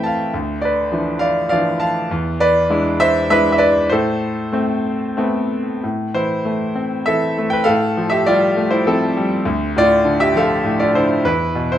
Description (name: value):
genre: classical, lyrical solo piano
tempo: 100 BPM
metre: 3/4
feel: rubato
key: A minor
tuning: A4 = 439 Hz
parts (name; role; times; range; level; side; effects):
- bright concert grand piano; solo; 0.0-11.8 s; D2 to A5; -15 LUFS; equal; none
room: moderate recital hall reverb, RT60 1.4 s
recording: none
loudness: -15 LUFS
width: side -11 dB against mid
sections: 0.0-5.8 A section; 5.8-11.8 B section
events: none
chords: 0.3 Dmadd9; 2.1 E7; 3.9 Amadd9; 5.8 Am; 7.7 Fadd9/A; 9.5 Dmadd9; 11.2 E5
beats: | 0.34 0.92 1.51 | 2.10 2.70 3.30 | 3.91 4.53 5.18 | 5.83 6.45 7.07 | 7.67 8.27 8.86 | 9.45 10.04 10.63 | 11.23